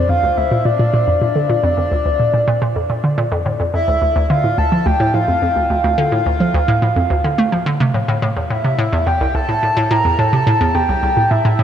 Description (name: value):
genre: ambient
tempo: 107 BPM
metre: 4/4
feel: straight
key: D minor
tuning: A4 = 440 Hz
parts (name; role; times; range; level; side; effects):
- breathy flute-like synth lead; melody; 0.0-11.6 s; D5 to Bb5; -17 LUFS; equal; wide subtle chorus, analog delay
- hollow square pluck; riff; 0.0-11.6 s; C2 to A3; -16 LUFS; equal; chorus, vintage 12-bit sampler grit, analog delay
room: wet huge ambient reverb, RT60 8.5 s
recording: cassette tape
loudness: -14 LUFS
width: side -9 dB against mid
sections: 0.0-11.6 A section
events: none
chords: 0.0 Bb; 3.5 Dm; 7.9 Am7